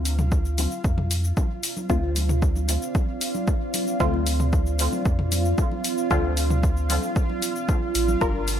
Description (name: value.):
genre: dub techno.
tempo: 114 BPM.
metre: 4/4.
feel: straight.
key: D minor.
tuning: A4 = 435 Hz.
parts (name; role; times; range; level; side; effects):
deep dark ambient pad; sustained chords; 1.8-8.6 s; G3 to D5; -30 LUFS; right 3 dB; chorus, built-in reverb, sidechain pumping.
pure sine sub bass; bass; 0.0-8.6 s; G1 to F2; -24 LUFS; equal; sidechain pumping.
bubbling stepped-filter texture; texture; 0.1-8.6 s; F4 to F5; -34 LUFS; equal; chorus, built-in reverb, sidechain pumping.
electronic hi-hat and shaker; drums; 0.1-8.6 s; none; -29 LUFS; left 2 dB; none.
electronic toms and congas; percussion; 0.2-8.3 s; none; -33 LUFS; left 1 dB; sidechain pumping on toms, sidechain pumping on perc, dub echo.
electronic kick drum; drums; 0.3-8.3 s; none; -23 LUFS; equal; none.
filtered dub chord stab; stabs; 1.9-8.4 s; D3 to Bb4; -28 LUFS; left 2 dB; chorus, phaser, sidechain pumping, dub echo.
room: light reverb.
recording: none.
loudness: -21 LUFS.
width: side -10 dB against mid.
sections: 0.0-8.6 A section.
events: none.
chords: 0.0 Dm7.